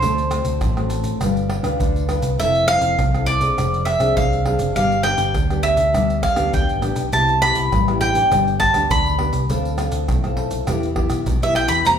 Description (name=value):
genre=samba and choro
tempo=101 BPM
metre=4/4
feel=straight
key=unclear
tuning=A4 = 440 Hz
part: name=mandolin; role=melody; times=0.0-12.0 s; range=C5 to B5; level=-18 LUFS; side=right 1 dB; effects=none
part: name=nylon-string guitar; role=accompaniment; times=0.0-12.0 s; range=G2 to B4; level=-24 LUFS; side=left 2 dB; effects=none
part: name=fingered electric bass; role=bass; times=0.0-12.0 s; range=F1 to E2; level=-23 LUFS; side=equal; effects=none
part: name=maracas, surdo, pandeiro and tamborim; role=percussion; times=0.0-12.0 s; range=none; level=-24 LUFS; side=right 1 dB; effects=none
room=moderate large studio reverb, RT60 0.9 s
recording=band playing live in one room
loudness=-16 LUFS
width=side -8 dB against mid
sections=0.0-12.0 A section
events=mandolin solo 0.0-12.0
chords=0.0 D7; 1.2 G7; 2.4 Fmaj7; 3.6 Fm6; 4.8 G; 7.1 Cmaj7; 8.3 G; 9.5 Dm7; 10.7 Em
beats=| 0.03 0.62 1.21 1.80 | 2.39 2.98 3.58 4.17 | 4.76 5.35 5.94 6.54 | 7.13 7.72 8.31 8.90 | 9.49 10.09 10.68 11.27 | 11.86